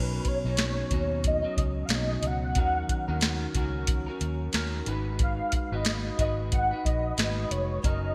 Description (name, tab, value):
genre	indie pop, bedroom pop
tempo	91 BPM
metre	4/4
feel	swing 60% on 16ths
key	unclear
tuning	A4 = 440 Hz
part	warm velvety synth lead	melody	0.0-8.1 s	B4 to F#5	-34 LUFS	equal	ensemble chorus, delay
part	electric guitar at the edge of break-up	accompaniment	0.0-8.1 s	B2 to B4	-36 LUFS	equal	analog chorus, warbly pitch drift
part	vintage muted fingered electric bass	bass	0.0-8.1 s	E#1 to D#2	-34 LUFS	equal	none
part	soft vintage rhythm box	drums	0.2-8.0 s	hi-hat, kick drum, snare drum	-31 LUFS	equal	gated reverb
room	light reverb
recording	bright 1980s-style digital production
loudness	-28 LUFS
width	mono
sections	0.0-8.1 A section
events	none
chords	0.0 Badd9; 2.6 D#m7; 4.9 G#m7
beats	0.58 1.24 1.90 | 2.56 3.22 3.88 4.54 | 5.20 5.86 6.52 7.18 | 7.84